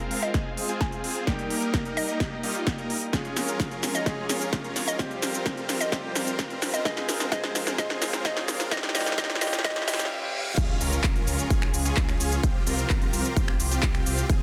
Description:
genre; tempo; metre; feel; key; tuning
EDM, festival progressive house; 129 BPM; 4/4; straight; unclear; A4 = 441 Hz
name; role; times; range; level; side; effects
bright concert grand piano; accompaniment; 0.0-10.6 s; G3 to Ab4; -37 LUFS; equal; sidechain pumping, dub echo
muted studio string section; sustained chords; 0.0-14.4 s; C3 to F5; -40 LUFS; equal; sidechain pumping, low-pass filter
supersaw chords; riff; 0.0-14.4 s; Bb3 to Bb4; -35 LUFS; equal; sidechain pumping, low-pass filter, dub echo
riser, reverse cymbal and impact; sound effects; 1.0-12.4 s; none; -41 LUFS; equal; none
big-room dance drum kit; drums; 0.1-14.4 s; crash cymbal, finger snaps, handclaps, hi-hat, shaker, snare drum; -32 LUFS; equal; none
hollow square pluck; melody; 0.2-10.0 s; Eb5 to Ab5; -35 LUFS; equal; chorus, dub echo
electronic kick drum; drums; 0.3-14.4 s; none; -29 LUFS; equal; none
detuned saw bass; bass; 10.6-14.4 s; F1 to Db2; -32 LUFS; equal; chorus, sidechain pumping
room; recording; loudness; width
light reverb; dense, heavily limited modern master, high-pass filter; -27 LUFS; mono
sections
0.0-10.6 A section; 10.6-14.4 B section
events
build-up 0.0-10.6; drum fill 0.0-10.1; filter sweep 0.0-10.6; reverse cymbal 9.6-10.6; drop 10.6-14.4; impact 10.6-12.4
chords
0.0 Fm; 1.3 Eb; 3.1 Db; 5.0 Csus4; 6.9 Fm; 8.7 Eb; 10.6 Db; 12.4 Csus4

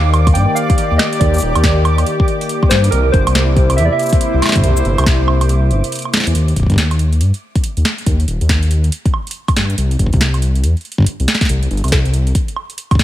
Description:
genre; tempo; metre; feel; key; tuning
IDM; 140 BPM; 4/4; swing 62% on 16ths; Eb major; A4 = 440 Hz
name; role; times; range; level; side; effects
warbly lo-fi synth keys; melody; 0.0-5.9 s; Bb4 to G5; -20 LUFS; right 2 dB; chorus, ping-pong delay
warm analog pad; sustained chords; 0.0-6.4 s; C3 to D5; -20 LUFS; left 2 dB; chorus
dark detuned saw bass; bass; 0.0-12.3 s; Eb1 to G2; -14 LUFS; equal; none
flickering grainy texture; texture; 0.0-6.4 s; D6; -27 LUFS; right 4 dB; built-in reverb
booming analog drum machine; drums; 0.1-13.0 s; cabasa, hi-hat, snare drum, woodblock; -19 LUFS; right 1 dB; none
electronic kick drum; drums; 0.3-13.0 s; none; -14 LUFS; equal; none
room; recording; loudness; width
little or no reverb; none; -12 LUFS; side -13 dB against mid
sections
0.0-6.4 A section; 6.4-13.0 B section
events
break 5.5-6.4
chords
0.0 Ebmaj7; 2.9 C7; 6.4 Eb; 9.8 C5

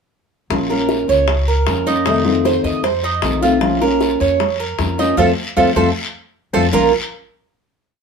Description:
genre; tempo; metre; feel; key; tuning
latin, Cuban son and guajira; 154 BPM; 4/4; straight; Bb harmonic minor; A4 = 439 Hz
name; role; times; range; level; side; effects
nylon-string guitar; accompaniment; 0.5-6.9 s; Bb2 to F4; -18 LUFS; left 3 dB; none
upright bass; bass; 0.5-6.9 s; Bb1 to F2; -22 LUFS; left 1 dB; none
bongos; percussion; 0.5-6.8 s; none; -25 LUFS; left 6 dB; none
guiro; percussion; 0.5-6.8 s; none; -30 LUFS; left 3 dB; none
Cuban tres; arpeggios; 0.7-6.9 s; Bb3 to Eb5; -17 LUFS; right 6 dB; none
room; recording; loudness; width
moderate studio reverb, RT60 0.6 s; band playing live in one room; -14 LUFS; side -5 dB against mid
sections
0.5-6.7 montuno (vamp); 6.7-8.0 final chord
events
band accent 5.2-6.7; drum fill 5.6-6.7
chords
0.5 Bbm; 2.1 F7; 3.6 Bbm; 5.2 F; 6.7 Bbm

